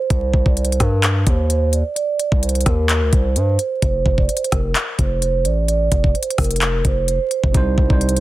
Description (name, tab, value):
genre	hip hop, trap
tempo	129 BPM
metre	4/4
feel	half-time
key	C dorian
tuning	A4 = 440 Hz
part	vibraphone with soft mallets	melody	0.0-8.2 s	Bb4 to D5	-22 LUFS	right 4 dB	low-pass filter, ping-pong delay
part	distorted 808-style bass	bass	0.1-8.2 s	F1 to G2	-19 LUFS	equal	distortion
part	trap drum kit	drums	0.1-8.2 s	handclaps, hi-hat, kick drum, rim click	-18 LUFS	equal	none
part	tine electric piano	accompaniment	7.5-8.2 s	C3 to C5	-21 LUFS	right 2 dB	overdrive, low-pass filter
room	little or no reverb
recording	dense, heavily limited modern master, vinyl crackle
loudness	-15 LUFS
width	side -16 dB against mid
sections	0.0-8.2 A section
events	filter sweep 0.0-7.5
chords	0.1 Cm; 3.8 F5; 7.5 Cm